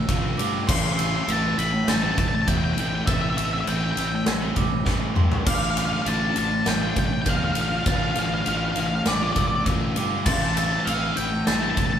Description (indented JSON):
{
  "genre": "post-rock",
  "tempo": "100 BPM",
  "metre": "4/4",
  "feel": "straight",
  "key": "A minor",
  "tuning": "A4 = 440 Hz",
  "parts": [
    { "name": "glockenspiel with brass mallets", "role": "arpeggios", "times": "0.0-12.0 s", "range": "C6 to A6", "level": "-33 LUFS", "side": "right 7 dB", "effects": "none" },
    { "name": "crunchy overdriven guitar", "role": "riff", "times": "0.0-12.0 s", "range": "A2 to F4", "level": "-27 LUFS", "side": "left 1 dB", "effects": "spring reverb" },
    { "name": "fuzz fingered electric bass", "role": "bass", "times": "0.0-12.0 s", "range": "A1 to G2", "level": "-28 LUFS", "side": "equal", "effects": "overdrive" },
    { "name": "huge arena drum kit", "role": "drums", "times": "0.1-11.9 s", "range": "crash cymbal, kick drum, ride cymbal, snare drum, toms", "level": "-25 LUFS", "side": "equal", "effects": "none" },
    { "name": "octave-fuzz lead guitar", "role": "melody", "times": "0.7-12.0 s", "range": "D5 to C6", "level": "-27 LUFS", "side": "left 1 dB", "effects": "distortion" }
  ],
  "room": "moderate large studio reverb, RT60 1.3 s",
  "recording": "band playing live in one room, faint mains hum",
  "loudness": "-20 LUFS",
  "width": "side -9 dB against mid",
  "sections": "0.0-12.0 A section",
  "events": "drum fill 4.9-5.5",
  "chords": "0.0 Dm/A; 0.7 Am7; 5.5 Dm/A; 10.3 Am7",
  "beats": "0.08 | 0.68 1.28 1.88 2.48 | 3.07 3.67 4.27 4.87 | 5.47 6.07 6.67 7.27 | 7.87 8.47 9.07 9.67 | 10.27 10.87 11.47"
}